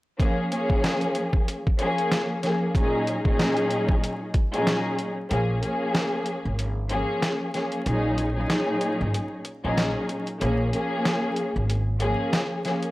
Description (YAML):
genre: hip hop, boom-bap hip-hop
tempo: 94 BPM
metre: 4/4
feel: swing 58% on 16ths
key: Bb minor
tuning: A4 = 439 Hz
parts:
  - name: warm studio string section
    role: accompaniment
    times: 0.2-12.9 s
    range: Bb2 to Ab4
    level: -25 LUFS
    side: equal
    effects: high-pass filter, low-pass filter
  - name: boom bap sampler-style drum kit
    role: drums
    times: 0.2-12.9 s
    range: hi-hat, kick drum, snare drum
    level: -25 LUFS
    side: equal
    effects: none
  - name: upright bass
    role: bass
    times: 5.3-12.1 s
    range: Ab1 to Bb1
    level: -26 LUFS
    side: equal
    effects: none
room: studio reverb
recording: dry, gritty hardware recording, transformer saturation, vinyl crackle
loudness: -22 LUFS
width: side -18 dB against mid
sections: 0.2-5.3 A section; 5.3-12.9 B section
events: kick muted 5.3-12.9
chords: 0.2 Bbm7; 2.7 Ab7sus4/Bb; 5.3 Bbm7; 7.9 Ab7sus4; 10.4 Bbm7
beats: | 0.20 0.83 1.47 2.11 | 2.75 3.39 4.03 4.66 | 5.30 5.94 6.58 7.22 | 7.86 8.49 9.13 9.77 | 10.41 11.05 11.69 12.32